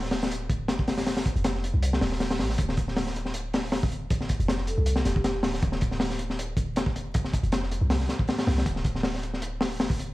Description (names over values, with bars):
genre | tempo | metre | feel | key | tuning
drum and bass, jungle | 158 BPM | 4/4 | swing 53% on 16ths | D minor | A4 = 441 Hz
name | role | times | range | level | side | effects
warm 808-style bass | bass | 0.0-10.1 s | D1 to C2 | -29 LUFS | equal | none
crunchy breakbeat drum kit | drums | 0.0-10.1 s | hi-hat, kick drum, snare drum | -26 LUFS | equal | none
vibraphone with soft mallets | melody | 4.7-5.3 s | G4 to A4 | -39 LUFS | left 1 dB | dub echo
room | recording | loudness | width
small room ambience | played on a big sound system in a bare room, large studio reverb, vinyl crackle | -24 LUFS | side -18 dB against mid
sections
0.0-10.1 A section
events
none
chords
none